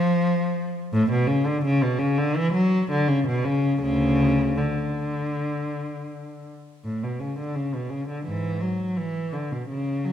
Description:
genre	classical, baroque-style suite movement for unaccompanied cello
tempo	78-87 BPM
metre	4/4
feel	rubato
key	unclear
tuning	A4 = 441 Hz
part	warm cello	solo	0.0-10.1 s	D2 to F#3	-22 LUFS	equal	none
room	moderate recital hall reverb, RT60 1.5 s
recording	minimal, uncompressed stereo recording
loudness	-22 LUFS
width	side -10 dB against mid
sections	0.0-6.9 A section; 6.9-10.1 A section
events	none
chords	none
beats	0.24 | 0.94 1.64 2.35 3.08 | 3.83 4.59 5.36 6.11 | 6.87 7.58 8.29 8.99 | 9.70

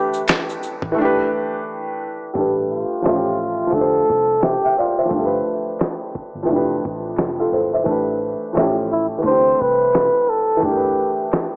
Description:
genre	lo-fi hip hop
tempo	87 BPM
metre	4/4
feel	swing 61% on 16ths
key	A minor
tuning	A4 = 440 Hz
part	breathy flugelhorn	melody	0.0-11.3 s	E4 to C5	-18 LUFS	equal	none
part	felt-muted upright piano	accompaniment	0.0-11.6 s	F2 to G5	-19 LUFS	equal	none
part	dusty soul sampler-style drum kit	drums	0.1-11.6 s	finger snaps, hi-hat, kick drum, shaker, snare drum	-21 LUFS	equal	none
part	vintage muted fingered electric bass	bass	0.8-10.9 s	F1 to D2	-33 LUFS	equal	none
room	moderate plate reverb, RT60 3.1 s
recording	worn, warbling old tape, cassette tape, warbly pitch drift, low-pass filter, small speaker sound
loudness	-16 LUFS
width	side -36 dB against mid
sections	0.0-2.3 A section; 2.3-11.6 B section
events	drums muted 1.0-2.3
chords	0.0 G; 1.0 A9sus4; 2.3 Asus2; 3.0 A7b13; 3.7 Dm7; 5.1 G7; 6.5 Fmaj9; 7.9 Asus2; 8.6 A7b13; 9.2 Dsus2; 10.6 G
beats	0.28 0.97 1.66 | 2.35 3.04 3.73 4.42 | 5.11 5.80 6.49 7.17 | 7.87 8.55 9.24 9.93 | 10.62 11.31

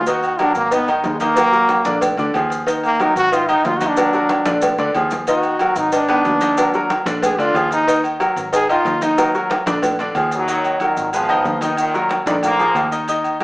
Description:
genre	latin, salsa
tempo	184 BPM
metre	4/4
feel	straight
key	Eb harmonic minor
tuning	A4 = 439 Hz
part	brilliant trombone	melody	0.0-9.3 s	Eb3 to Ab4	-17 LUFS	equal	none
part	fingered electric bass	bass	0.0-13.4 s	Ab1 to Eb2	-30 LUFS	equal	none
part	bongos and cowbell	percussion	0.0-10.5 s	none	-24 LUFS	equal	none
part	bright upright piano	accompaniment	0.1-13.4 s	D3 to Eb5	-20 LUFS	left 1 dB	none
part	agogo bells and timbales	percussion	0.1-13.4 s	none	-22 LUFS	right 1 dB	none
part	congas	percussion	0.1-13.4 s	none	-28 LUFS	equal	none
part	maracas	percussion	0.1-13.4 s	none	-37 LUFS	right 1 dB	none
part	bright trombone section	melody	10.3-13.4 s	Bb2 to Bb3	-20 LUFS	equal	none
room	wet studio reverb, RT60 0.6 s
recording	band playing live in one room, small speaker sound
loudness	-15 LUFS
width	side -22 dB against mid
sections	0.0-10.5 A section; 10.5-13.4 B section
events	trombone solo 0.0-10.5; drum fill 4.6-5.3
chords	0.1 Ebm; 0.7 Ab5; 1.4 Ebm; 2.0 Bb7; 2.7 Ebm; 3.3 Ab5; 4.0 Ebm; 4.6 Bb7; 5.3 Ebm; 5.9 Abm; 6.6 Ebm; 7.2 Bb7; 7.9 Ebm; 8.5 Ab5; 9.2 Ebm; 9.8 Bb7; 10.5 Ebm; 11.1 Abm; 11.8 Ebm; 12.4 Bb7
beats	| 0.07 0.39 0.72 1.04 | 1.37 1.70 2.02 2.35 | 2.67 3.00 3.32 3.65 | 3.97 4.30 4.62 4.95 | 5.27 5.60 5.92 6.25 | 6.58 6.90 7.23 7.55 | 7.88 8.20 8.53 8.85 | 9.18 9.50 9.83 10.15 | 10.48 10.80 11.13 11.46 | 11.78 12.11 12.43 12.76 | 13.08 13.41

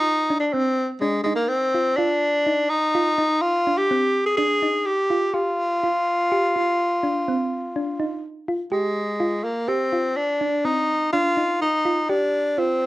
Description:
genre	progressive instrumental, progressive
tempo	124 BPM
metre	7/4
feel	straight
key	unclear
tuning	A4 = 439 Hz
part	breathy tenor saxophone	melody	0.0-12.9 s	Ab3 to Ab4	-20 LUFS	equal	none
part	thumb-piano-like synth pluck	arpeggios	0.0-12.8 s	C4 to G4	-26 LUFS	right 1 dB	chorus
room	moderate studio reverb, RT60 0.7 s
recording	worn, warbling old tape, cassette tape, warbly pitch drift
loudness	-20 LUFS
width	side -17 dB against mid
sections	0.0-8.7 A section; 8.7-12.9 B section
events	none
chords	0.0 F5; 5.4 Cmadd11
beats	0.05 0.53 1.01 1.50 | 1.98 2.46 2.94 3.42 3.91 4.39 4.87 | 5.35 5.83 6.31 6.80 7.28 7.76 8.24 | 8.72 9.21 9.69 10.17 10.65 11.13 11.62 | 12.10 12.58

